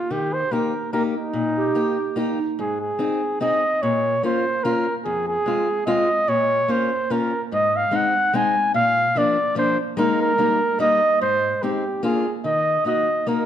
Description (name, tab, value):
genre	alpine folk, alpine dance band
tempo	146 BPM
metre	3/4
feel	swing 55% on 8ths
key	Ab major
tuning	A4 = 440 Hz
part	mellow flugelhorn	melody	0.0-13.5 s	Eb4 to Ab5	-20 LUFS	right 1 dB	none
part	fingerpicked acoustic archtop guitar	accompaniment	0.1-13.5 s	F2 to Ab4	-24 LUFS	left 3 dB	none
part	dark clarinet	second line	1.6-2.6 s	Eb4 to G4	-24 LUFS	right 7 dB	none
room	moderate recital hall reverb, RT60 1.4 s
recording	dark, warm production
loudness	-19 LUFS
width	side -10 dB against mid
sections	0.0-2.6 A section; 2.6-12.5 B section; 12.5-13.5 C section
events	none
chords	0.0 Eb; 2.6 Ab; 3.8 Bbm; 5.1 Fm; 6.3 Bbm; 7.5 Ab7; 8.8 Bb; 10.0 Ebsus4; 10.4 Eb; 11.2 Ab; 12.0 Bb7; 12.5 Ebm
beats	| 0.12 0.52 0.93 | 1.34 1.76 2.18 | 2.59 3.01 3.42 | 3.83 4.24 4.64 | 5.05 5.46 5.87 | 6.28 6.69 7.11 | 7.52 7.93 8.34 | 8.75 9.16 9.56 | 9.97 10.38 10.79 | 11.20 11.62 12.03 | 12.45 12.87 13.28